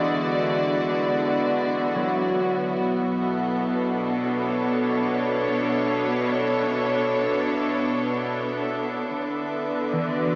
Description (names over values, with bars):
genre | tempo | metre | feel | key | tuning
ambient | 57 BPM | 3/4 | straight | unclear | A4 = 440 Hz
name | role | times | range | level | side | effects
dark chamber string section | sustained chords | 0.0-10.4 s | B2 to D5 | -23 LUFS | equal | none
concert harp | arpeggios | 0.0-2.9, 9.9-10.4 s | E3 to G#3 | -30 LUFS | equal | tape echo
clear symphonic cello section | bass | 0.0-10.4 s | B2 to D3 | -30 LUFS | equal | none
hand-pumped harmonium | drone | 0.0-10.4 s | B3 to E4 | -35 LUFS | equal | none
room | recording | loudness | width
wet concert hall reverb, RT60 2.4 s | cassette tape, small speaker sound | -21 LUFS | side -27 dB against mid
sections
0.0-10.4 A section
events
none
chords
0.0 D6; 2.8 Bm7; 9.1 D6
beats
0.76 1.80 | 2.84 3.88 4.92 | 5.96 7.02 8.08 | 9.15 10.21